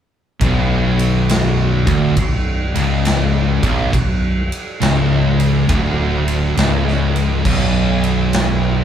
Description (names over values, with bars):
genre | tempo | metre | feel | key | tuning
stoner and doom metal | 68 BPM | 4/4 | swing 66% on 8ths | B minor | A4 = 440 Hz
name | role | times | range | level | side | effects
thick fuzz guitar | riff | 0.4-8.8 s | B1 to D2 | -22 LUFS | left 8 dB | distortion
thick fuzz guitar | riff | 0.4-8.8 s | B1 to D2 | -20 LUFS | right 5 dB | distortion
thick fuzz guitar | riff | 0.4-8.8 s | B1 to D2 | -20 LUFS | equal | distortion
overdriven fingered electric bass | bass | 0.4-8.8 s | B0 to D1 | -21 LUFS | equal | none
big rock drum kit | drums | 0.4-8.6 s | crash cymbal, kick drum, ride cymbal, snare drum | -20 LUFS | equal | none
room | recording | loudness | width
moderate large studio reverb, RT60 1.3 s | band playing live in one room | -14 LUFS | side -9 dB against mid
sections
0.4-8.8 A section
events
none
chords
0.4 Bm